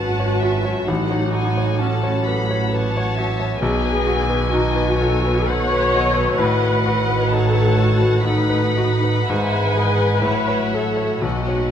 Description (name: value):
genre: classical, romantic movement for piano and orchestra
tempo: 56-69 BPM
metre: 3/4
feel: rubato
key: unclear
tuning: A4 = 436 Hz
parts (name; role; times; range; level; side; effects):
- clear concert grand piano; melody; 0.0-11.7 s; A1 to C#5; -22 LUFS; left 1 dB; none
- muted chamber violin section; melody; 0.0-11.7 s; D#5 to B5; -28 LUFS; left 6 dB; none
- muted chamber violin section; second line; 0.0-11.7 s; A4 to A5; -28 LUFS; right 1 dB; none
- muted chamber viola section; accompaniment; 0.0-11.7 s; C#4 to C#5; -22 LUFS; left 1 dB; none
- dark French horn section; sustained chords; 0.0-11.7 s; D#3 to G#4; -28 LUFS; left 5 dB; none
- muted chamber cello section; bass; 0.0-11.7 s; G#2 to B2; -24 LUFS; right 3 dB; none
- muted chamber double bass section; bass; 0.0-11.7 s; G#1 to B1; -26 LUFS; right 3 dB; none
room: light reverb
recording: close, detailed microphones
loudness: -16 LUFS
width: side -9 dB against mid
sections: 0.0-11.7 A section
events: none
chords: 0.0 F#m; 0.9 F#m/A; 3.6 B; 6.4 B7/A; 9.3 E/G#; 10.3 F#m/A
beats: | 0.89 1.81 2.73 | 3.61 4.51 5.49 | 6.40 7.33 8.27 | 9.30 10.27 11.24